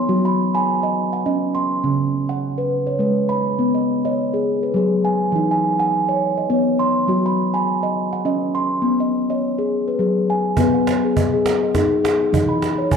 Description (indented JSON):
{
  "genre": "world meditative, meditative tuned percussion",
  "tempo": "103 BPM",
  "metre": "3/4",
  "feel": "swing 55% on 16ths",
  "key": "B major",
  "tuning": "A4 = 440 Hz",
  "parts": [
    { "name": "steel tongue drum", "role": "arpeggios", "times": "0.0-13.0 s", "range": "C#3 to C6", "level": "-17 LUFS", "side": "equal", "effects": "none" },
    { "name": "cajon", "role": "percussion", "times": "10.6-13.0 s", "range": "none", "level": "-22 LUFS", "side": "right 3 dB", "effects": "none" }
  ],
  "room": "wet echo chamber reverb, RT60 1.8 s, small room reverb",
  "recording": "dark, warm production",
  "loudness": "-17 LUFS",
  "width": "side -6 dB against mid",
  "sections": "0.0-10.6 A section; 10.6-13.0 B section",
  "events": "none",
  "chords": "0.1 F#5; 1.8 C#5; 3.6 B; 5.3 E; 7.1 F#5; 8.8 B; 12.3 E5"
}